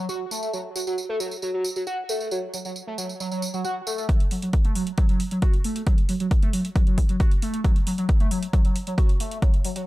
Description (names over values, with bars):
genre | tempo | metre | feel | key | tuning
driving peak-time techno | 135 BPM | 4/4 | straight | F# minor | A4 = 440 Hz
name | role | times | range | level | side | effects
overdriven synth lead | riff | 0.0-9.8 s | F#3 to F#4 | -27 LUFS | equal | distortion, phaser, analog chorus, sidechain pumping, tape echo
electronic tambourine and hi-hat | drums | 0.1-9.8 s | none | -34 LUFS | right 2 dB | sidechain pumping on hats, sidechain pumping on perc
electronic kick drum | drums | 4.1-9.5 s | none | -20 LUFS | equal | none
room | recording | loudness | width
digital ambience | dry, gritty hardware recording | -21 LUFS | side -17 dB against mid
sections
0.0-4.1 A section; 4.1-9.9 B section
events
build-up 4.1-9.9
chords
none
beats
0.09 | 0.53 0.98 1.42 1.87 | 2.31 2.76 3.20 3.65 | 4.09 4.53 4.98 5.42 | 5.87 6.31 6.76 7.20 | 7.64 8.09 8.53 8.98 | 9.42